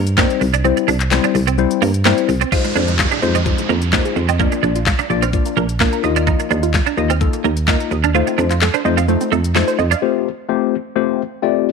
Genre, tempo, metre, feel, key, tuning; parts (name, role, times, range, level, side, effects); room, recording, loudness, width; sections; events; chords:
dance-pop; 128 BPM; 4/4; straight; A4 = 437 Hz
twelve-string electric guitar; riff; 0.0-10.0 s; A3 to F4; -20 LUFS; right 16 dB; ensemble chorus
solid FM bass; bass; 0.0-9.9 s; Bb1 to G2; -18 LUFS; right 1 dB; sidechain pumping
pop drum kit; drums; 0.1-10.0 s; crash cymbal, handclaps, hi-hat, kick drum, shaker, snare drum; -20 LUFS; left 2 dB
tine electric piano; accompaniment; 0.2-11.7 s; G3 to Eb5; -19 LUFS; left 14 dB; phaser, sidechain pumping
group handclap; percussion; 0.2-2.2 s; -30 LUFS; right 14 dB
wide unison pluck; arpeggios; 2.5-10.0 s; F3 to F6; -24 LUFS; right 13 dB; sidechain pumping, slapback echo
downlifter; sound effects; 2.5-6.3 s; -26 LUFS; right 3 dB
light reverb; 1960s-style stereo with parts hard left and right; -14 LUFS; side -5 dB against mid
0.0-2.5 A section; 2.5-10.0 B section; 10.0-11.7 A section
kick muted 0.6-2.5, 8.1-10.0
0.0 Cm; 0.6 C; 2.5 Fm7; 4.4 Bb; 6.0 Ebsus2; 8.1 F7; 10.0 Fadd9